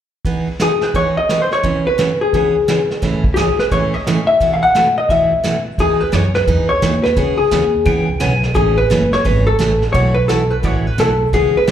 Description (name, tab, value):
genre	country, western swing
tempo	173 BPM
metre	4/4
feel	swing 63% on 8ths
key	E major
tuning	A4 = 440 Hz
part	vintage brush drum kit	drums	0.2-11.7 s	brushed snare drum, hi-hat, kick drum, snare drum	-22 LUFS	equal	none
part	picked steel-string acoustic guitar	accompaniment	0.3-11.7 s	A2 to G#4	-20 LUFS	right 3 dB	slapback echo
part	vintage hollow-body jazz guitar	melody	0.6-11.7 s	G4 to F#5	-15 LUFS	left 2 dB	slapback echo
part	upright bass	bass	5.8-11.7 s	F#1 to F#2	-18 LUFS	equal	none
part	clean lap steel guitar	second line	7.9-8.4 s	G5 to G#5	-24 LUFS	left 1 dB	slapback echo
room	moderate plate reverb, RT60 2.0 s, small room ambience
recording	live gig heard through the venue's PA, club reverb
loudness	-13 LUFS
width	side -10 dB against mid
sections	0.2-5.8 A section; 5.8-11.7 B section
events	none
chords	0.2 Emaj7; 1.6 C#m7; 3.0 Amaj7; 4.4 B7sus4; 5.8 Emaj7; 7.2 C#m9; 8.6 Amaj7; 9.9 B7sus4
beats	| 0.25 0.59 0.94 1.28 | 1.63 1.98 2.32 2.67 | 3.02 3.36 3.71 4.05 | 4.40 4.75 5.09 5.44 | 5.79 6.13 6.48 6.83 | 7.17 7.52 7.87 8.21 | 8.56 8.90 9.25 9.60 | 9.95 10.29 10.64 10.99 | 11.33 11.68